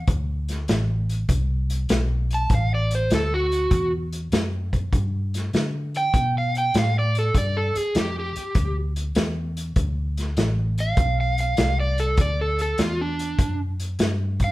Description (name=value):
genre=electric blues shuffle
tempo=99 BPM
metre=4/4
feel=swing 68% on 8ths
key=unclear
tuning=A4 = 437 Hz
part: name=overdriven semi-hollow guitar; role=melody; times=0.0-14.5 s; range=D4 to A5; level=-24 LUFS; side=right 1 dB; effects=none
part: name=vintage muted fingered electric bass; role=bass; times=0.0-14.5 s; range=A1 to D3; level=-24 LUFS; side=equal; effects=none
part: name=vintage drum kit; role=drums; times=0.1-14.5 s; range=hi-hat, kick drum, snare drum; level=-24 LUFS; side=equal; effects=none
room=moderate large studio reverb, RT60 0.9 s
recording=band playing live in one room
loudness=-21 LUFS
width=side -18 dB against mid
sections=0.0-14.5 A section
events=none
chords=0.1 D9; 4.9 G9; 9.8 D9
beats=| 0.08 0.69 1.29 1.90 | 2.50 3.11 3.71 4.32 | 4.92 5.53 6.13 6.74 | 7.34 7.95 8.55 9.16 | 9.76 10.37 10.97 11.58 | 12.18 12.79 13.39 13.99